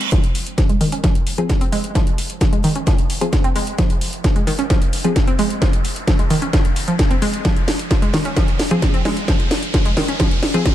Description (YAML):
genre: driving peak-time techno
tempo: 131 BPM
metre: 4/4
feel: straight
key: F minor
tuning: A4 = 440 Hz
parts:
  - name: techno drum kit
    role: drums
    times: 0.0-10.7 s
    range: hi-hat, snare drum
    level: -23 LUFS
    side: equal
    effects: none
  - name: reverse cymbal and riser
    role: sound effects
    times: 0.0-10.7 s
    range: none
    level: -29 LUFS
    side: right 2 dB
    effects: none
  - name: analog pluck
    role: riff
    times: 0.1-10.6 s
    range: Eb3 to Db4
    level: -22 LUFS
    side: right 1 dB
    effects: chorus, sidechain pumping, dub echo
  - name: electronic kick drum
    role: drums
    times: 0.1-10.7 s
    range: none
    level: -18 LUFS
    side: equal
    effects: none
  - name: wavetable chord stab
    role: stabs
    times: 1.4-10.7 s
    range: F3 to Ab4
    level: -24 LUFS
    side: left 4 dB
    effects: cassette tape, sidechain pumping, dub echo
room: light reverb, digital ambience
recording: lossy compression artefacts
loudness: -15 LUFS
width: side -12 dB against mid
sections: 0.1-10.7 A section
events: build-up 0.1-10.7; drum fill 0.1-10.7; riser 0.1-10.7; filter sweep on synth arpeggio sound 0.1-10.7; filter sweep on synth stab 0.1-10.7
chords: 0.1 Fm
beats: | 0.12 0.58 1.04 1.50 | 1.95 2.41 2.87 3.33 | 3.79 4.24 4.70 5.16 | 5.62 6.08 6.53 6.99 | 7.45 7.91 8.37 8.82 | 9.28 9.74 10.20 10.65